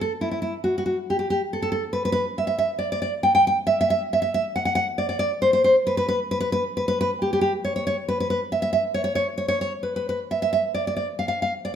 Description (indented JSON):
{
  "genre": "romantic piece for solo classical guitar",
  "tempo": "46 BPM (dotted quarters)",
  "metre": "6/8",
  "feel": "rubato",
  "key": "unclear",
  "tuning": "A4 = 440 Hz",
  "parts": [
    { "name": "nylon-string guitar", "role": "solo", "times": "0.0-11.7 s", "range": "E4 to G5", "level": "-21 LUFS", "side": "equal", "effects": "none" }
  ],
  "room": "wet recital hall reverb, RT60 1.3 s",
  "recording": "minimal, uncompressed stereo recording",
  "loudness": "-21 LUFS",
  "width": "side -8 dB against mid",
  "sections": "0.0-11.8 A section",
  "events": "none",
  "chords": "none"
}